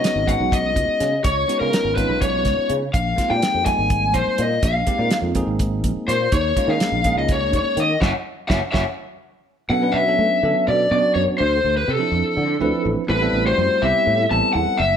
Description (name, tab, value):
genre	electric jazz fusion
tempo	248 BPM (eighths)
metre	7/8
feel	straight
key	B minor from 9.7 s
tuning	A4 = 440 Hz
part	lead guitar through a small cranked amp	melody	0.0-15.0 s	A4 to A5	-20 LUFS	left 2 dB	overdrive
part	bell-like tine electric piano	accompaniment	0.0-14.8 s	F3 to B4	-25 LUFS	right 3 dB	fast stereo tremolo
part	damped 70s drum kit	drums	0.0-8.9 s	hi-hat, kick drum, snare drum	-22 LUFS	right 1 dB	none
part	sustaining fretless electric bass	bass	0.2-15.0 s	Gb1 to A3	-23 LUFS	equal	ensemble chorus
room	light reverb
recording	none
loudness	-17 LUFS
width	side -8 dB against mid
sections	0.0-9.7 A section; 9.7-15.0 B section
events	band accent 8.0-9.7; drum fill 8.3-9.7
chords	0.0 Db9sus4; 2.9 Bb9sus4; 6.3 Eb9sus4; 8.0 Gb5; 9.7 Bm9; 11.4 Dm9; 13.1 Am9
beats	0.03 0.27 0.52 0.76 1.00 | 1.24 1.48 1.73 1.97 2.21 2.45 2.69 | 2.94 3.18 3.42 3.66 3.90 4.14 4.39 | 4.63 4.87 5.11 5.36 5.60 5.84 6.08 | 6.32 6.56 6.81 7.05 7.29 7.53 7.77 | 8.02 8.26 8.50 8.74 8.98 9.22 9.47 | 9.71 9.95 10.19 10.43 10.68 10.92 11.16 | 11.40 11.64 11.88 12.13 12.37 12.61 12.85 | 13.09 13.33 13.58 13.82 14.06 14.30 14.54 | 14.79